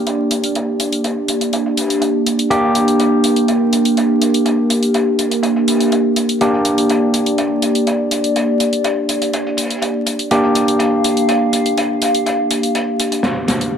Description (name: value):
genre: breakbeat, breaks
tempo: 123 BPM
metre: 4/4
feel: straight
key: G minor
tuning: A4 = 441 Hz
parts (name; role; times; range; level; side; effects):
- warbly tape-like pad; sustained chords; 0.0-13.7 s; Bb3 to F5; -18 LUFS; equal; chorus, built-in reverb, vintage 12-bit sampler grit
- overdriven tine electric piano; stabs; 0.0-13.7 s; Bb3 to G4; -17 LUFS; equal; ping-pong delay
- crunchy breakbeat drum kit; drums; 0.1-13.6 s; hi-hat, snare drum; -24 LUFS; equal; low-pass filter on kick, low-pass filter on hats, low-pass filter on snare, low-pass filter on room
- electronic hi-hat; drums; 0.1-13.7 s; none; -22 LUFS; left 1 dB; none
room: light reverb, small room ambience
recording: vinyl crackle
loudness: -14 LUFS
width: side -8 dB against mid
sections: 0.0-13.8 A section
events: filter sweep on ambient pad 0.0-13.8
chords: 0.0 Gm